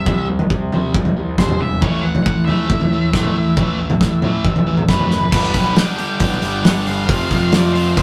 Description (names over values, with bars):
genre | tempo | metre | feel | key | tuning
quiet-loud alternative rock | 137 BPM | 4/4 | straight | unclear | A4 = 440 Hz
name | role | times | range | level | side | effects
octave-fuzz lead guitar | melody | 0.0-8.0 s | B4 to G5 | -27 LUFS | equal | distortion
electric guitar through a small old amp | arpeggios | 0.0-1.8 s | C3 to C4 | -29 LUFS | equal | slapback echo
fuzz guitar | riff | 0.0-8.0 s | F2 to G4 | -26 LUFS | equal | distortion
fuzz fingered electric bass | bass | 0.0-8.0 s | E1 to C3 | -24 LUFS | equal | overdrive
loose indie drum kit | drums | 0.1-8.0 s | crash cymbal, hi-hat, kick drum, snare drum, toms | -20 LUFS | equal | none
scooped high-gain guitar | riff | 1.8-8.0 s | F2 to G4 | -26 LUFS | equal | distortion
overdriven electric guitar | riff | 5.3-8.0 s | F2 to G3 | -30 LUFS | equal | none
room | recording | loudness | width
light reverb | rough rehearsal-room recording, tube saturation | -17 LUFS | mono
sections
0.0-5.3 A section; 5.3-8.0 B section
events
drum fill 5.1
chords
0.0 C; 1.8 A5; 5.3 G; 7.1 F